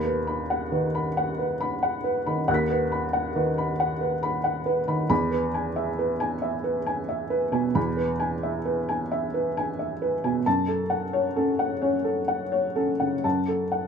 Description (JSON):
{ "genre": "neoclassical minimalist piano", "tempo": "67 BPM", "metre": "3/4", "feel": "rubato", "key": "unclear", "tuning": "A4 = 440 Hz", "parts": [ { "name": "felt-muted upright piano", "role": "solo", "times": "0.0-13.9 s", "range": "D#2 to B6", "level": "-23 LUFS", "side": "equal", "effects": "none" } ], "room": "moderate studio reverb, RT60 0.5 s", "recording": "band playing live in one room", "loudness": "-23 LUFS", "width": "side -6 dB against mid", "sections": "0.0-13.9 A section", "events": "none", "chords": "0.0 B/D#; 5.1 E; 10.5 F#m", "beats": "0.72 1.60 | 2.49 3.36 4.24 | 5.10 5.99 6.87 | 7.76 8.66 9.57 | 10.46 11.36 12.29 | 13.24" }